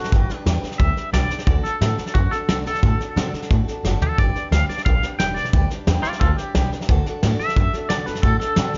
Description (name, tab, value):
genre	rockabilly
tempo	177 BPM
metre	4/4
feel	straight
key	D mixolydian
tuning	A4 = 440 Hz
part	twangy electric guitar	melody	0.0-8.7 s	F4 to G5	-28 LUFS	equal	tremolo, tape echo
part	picked steel-string acoustic guitar	accompaniment	0.0-8.8 s	D3 to B4	-32 LUFS	equal	none
part	upright bass	bass	0.0-8.8 s	E1 to C3	-24 LUFS	equal	none
part	soft brush drum kit	drums	0.0-8.8 s	hi-hat, kick drum, snare drum, toms	-24 LUFS	equal	none
room	studio reverb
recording	nothing above 7.5 kHz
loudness	-20 LUFS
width	mono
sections	0.0-8.8 A section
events	clean electric guitar solo 0.0-8.8; drum fill 3.8-4.2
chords	0.1 G; 1.5 D; 4.2 G; 6.9 D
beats	| 0.12 0.46 0.80 1.14 | 1.47 1.81 2.15 2.49 | 2.83 3.17 3.50 3.84 | 4.18 4.52 4.86 5.20 | 5.53 5.87 6.21 6.55 | 6.88 7.22 7.56 7.90 | 8.24 8.57